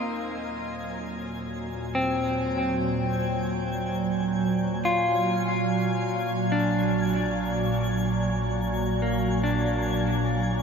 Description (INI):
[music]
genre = ambient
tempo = 72 BPM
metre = 4/4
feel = straight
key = Eb dorian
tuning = A4 = 440 Hz
[part]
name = clean electric guitar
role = arpeggios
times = 0.0-10.6 s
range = Bb3 to F4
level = -28 LUFS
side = left 2 dB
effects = diffuse ambient delay
[part]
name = deep rumbling drone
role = bass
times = 0.1-10.6 s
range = Bb1 to Eb2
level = -38 LUFS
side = equal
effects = built-in reverb
[part]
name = organ-like drone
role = drone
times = 0.8-10.6 s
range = Bb2 to Gb3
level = -26 LUFS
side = right 2 dB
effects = ensemble chorus, built-in reverb
[part]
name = twinkling granular texture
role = texture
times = 0.0-10.6 s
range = Ab5 to Ab6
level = -37 LUFS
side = equal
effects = built-in reverb
[sound]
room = wet shimmer reverb, RT60 8.2 s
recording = none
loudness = -24 LUFS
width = side -6 dB against mid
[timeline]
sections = 0.0-10.6 A section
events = fade-in on synth drone 0.0-10.6; fade-in on synth texture 0.0-10.6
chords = 0.0 Ebm; 5.7 Bb